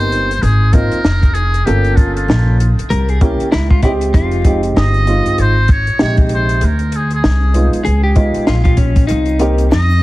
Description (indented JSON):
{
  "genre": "hip hop, jazz-hop",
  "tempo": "97 BPM",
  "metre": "4/4",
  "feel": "swing 60% on 16ths",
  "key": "unclear",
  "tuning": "A4 = 442 Hz",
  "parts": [
    { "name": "trumpet with metal mute", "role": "melody", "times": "0.0-10.0 s", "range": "F4 to Eb5", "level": "-20 LUFS", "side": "equal", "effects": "tape echo" },
    { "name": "dark upright piano", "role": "accompaniment", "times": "0.0-9.6 s", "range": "C3 to Eb5", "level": "-19 LUFS", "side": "right 1 dB", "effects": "none" },
    { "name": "upright bass", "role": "bass", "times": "0.0-10.0 s", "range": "F1 to F2", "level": "-14 LUFS", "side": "equal", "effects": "none" },
    { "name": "compact cocktail drum kit", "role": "drums", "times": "0.0-9.9 s", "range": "hi-hat, kick drum, snare drum", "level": "-14 LUFS", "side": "equal", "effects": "none" },
    { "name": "clean electric guitar", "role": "second line", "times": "2.9-9.5 s", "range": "Db4 to Bb4", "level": "-21 LUFS", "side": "left 2 dB", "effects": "wide subtle chorus, tape echo" },
    { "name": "egg shaker", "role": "percussion", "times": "9.1-10.0 s", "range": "none", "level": "-27 LUFS", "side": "left 1 dB", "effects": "none" }
  ],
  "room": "studio reverb",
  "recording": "heavily compressed radio sound, vinyl crackle",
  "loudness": "-11 LUFS",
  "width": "side -18 dB against mid",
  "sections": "0.0-10.0 A section",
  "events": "kick muted 9.1-10.0",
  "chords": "0.0 Abmaj9; 1.7 Gm7b5; 2.9 C7b9; 4.1 Fm7; 6.6 Dm7b5; 7.8 Db9; 9.1 Cm7"
}